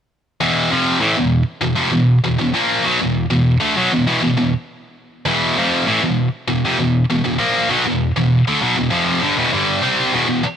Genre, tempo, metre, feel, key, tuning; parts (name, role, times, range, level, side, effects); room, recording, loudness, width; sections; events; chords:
metal; 99 BPM; 4/4; straight; E phrygian; A4 = 436 Hz
heavy high-gain guitar; solo; 0.4-10.5 s; E2 to C4; -14 LUFS; equal; distortion
little or no reverb; -14 LUFS; side -8 dB against mid
0.4-10.1 A section
0.4 E5